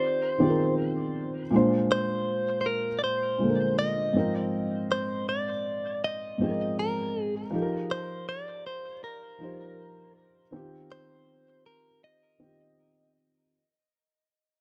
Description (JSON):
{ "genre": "R&B", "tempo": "80 BPM", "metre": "4/4", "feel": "swing 58% on 16ths", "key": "Eb major", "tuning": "A4 = 440 Hz", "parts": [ { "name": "direct-recorded clean electric guitar", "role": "melody", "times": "0.0-13.1 s", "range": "Bb4 to Eb5", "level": "-32 LUFS", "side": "equal", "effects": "phaser, dub echo" }, { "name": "felt-muted upright piano", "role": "accompaniment", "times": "0.0-13.6 s", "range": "Ab2 to C5", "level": "-30 LUFS", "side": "equal", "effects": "none" } ], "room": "light reverb, small room ambience", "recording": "echo-heavy mix", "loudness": "-28 LUFS", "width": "mono", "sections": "0.0-13.5 A section", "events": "fade-out 0.0-13.5", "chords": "0.0 Eb69; 1.5 Bb9; 4.2 Ab69; 7.5 F9sus4; 10.5 Eb69" }